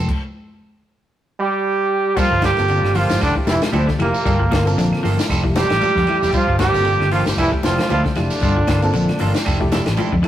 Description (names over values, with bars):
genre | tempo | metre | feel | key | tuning
afrobeat | 115 BPM | 4/4 | swing 56% on 16ths | G dorian | A4 = 440 Hz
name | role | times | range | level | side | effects
electric guitar at the edge of break-up | arpeggios | 0.0-10.3 s | D3 to G3 | -26 LUFS | left 4 dB | none
semi-hollow electric guitar | stabs | 0.0-10.3 s | G3 to A4 | -28 LUFS | right 3 dB | none
fingered electric bass | bass | 0.0-10.2 s | E1 to F2 | -20 LUFS | equal | none
compact cocktail drum kit | drums | 0.1-10.3 s | crash cymbal, hi-hat, kick drum, ride cymbal, snare drum | -23 LUFS | equal | none
brilliant trombone | melody | 1.4-9.2 s | Bb3 to G4 | -20 LUFS | right 2 dB | tape echo
bright trombone | second line | 1.4-9.2 s | Bb2 to G3 | -26 LUFS | right 3 dB | none
shekere | percussion | 2.2-10.1 s | none | -32 LUFS | right 2 dB | none
claves | percussion | 2.4-10.3 s | none | -37 LUFS | right 1 dB | none
congas | percussion | 2.4-10.3 s | none | -28 LUFS | left 2 dB | none
reed electric piano | accompaniment | 2.6-10.3 s | A3 to A4 | -27 LUFS | left 1 dB | fast tremolo
room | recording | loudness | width
moderate stone room reverb, RT60 1.2 s | rough rehearsal-room recording, warm saturation | -15 LUFS | side -12 dB against mid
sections
0.0-2.2 A section; 2.2-10.3 B section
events
stop 0.1-2.2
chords
0.1 N.C.; 2.2 Gm11; 3.2 Fmaj9; 4.3 Gm11; 5.3 Fmaj9; 6.3 Gm11; 7.4 Fmaj9; 8.4 Gm11; 9.5 Fmaj9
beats
| 0.09 0.61 1.13 1.65 | 2.17 2.70 3.22 3.74 | 4.26 4.78 5.30 5.82 | 6.34 6.86 7.38 7.90 | 8.42 8.94 9.46 9.98